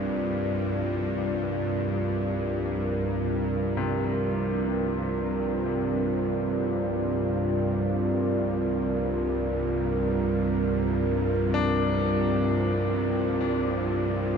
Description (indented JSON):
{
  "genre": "dark ambient drone",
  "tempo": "free time",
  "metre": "none",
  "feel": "none",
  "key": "unclear",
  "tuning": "A4 = 441 Hz",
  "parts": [
    { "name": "dark analog pad", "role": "sustained chords", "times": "0.0-14.4 s", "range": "C4 to D5", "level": "-28 LUFS", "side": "right 1 dB", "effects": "chorus" },
    { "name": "bright grand piano", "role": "arpeggios", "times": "0.0-14.4 s", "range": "D2 to D4", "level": "-35 LUFS", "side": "left 6 dB", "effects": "ping-pong delay" },
    { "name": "bowed-like drone", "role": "drone", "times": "0.0-14.4 s", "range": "C2 to G2", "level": "-27 LUFS", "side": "right 1 dB", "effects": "built-in reverb" }
  ],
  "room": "wet huge ambient reverb, RT60 7.6 s",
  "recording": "dark, warm production",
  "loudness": "-24 LUFS",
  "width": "side -6 dB against mid",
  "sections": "0.0-14.4 A section",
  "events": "none",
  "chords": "0.0 Csus2"
}